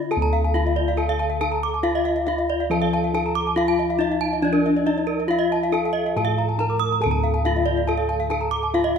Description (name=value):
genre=Balinese gamelan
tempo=139 BPM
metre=4/4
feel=straight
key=unclear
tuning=A4 = 440 Hz
part: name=gamelan-type bronze metallophone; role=melody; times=0.0-9.0 s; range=D4 to Bb4-20c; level=-24 LUFS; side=left 1 dB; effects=none
part: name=gamelan-type bossed gongs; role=bass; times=0.0-9.0 s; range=D2 to A4-30c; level=-24 LUFS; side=left 1 dB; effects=none
part: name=gamelan-type bronze metallophone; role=arpeggios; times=0.1-9.0 s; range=D5 to D6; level=-26 LUFS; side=left 2 dB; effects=none
part: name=gamelan-type bronze metallophone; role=arpeggios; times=0.2-9.0 s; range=Bb4-20c to Eb6+20c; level=-27 LUFS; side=right 7 dB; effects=none
room=moderate scoring stage reverb, RT60 1.8 s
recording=minimal, uncompressed stereo recording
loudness=-19 LUFS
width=side -7 dB against mid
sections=0.1-9.0 A section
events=none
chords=none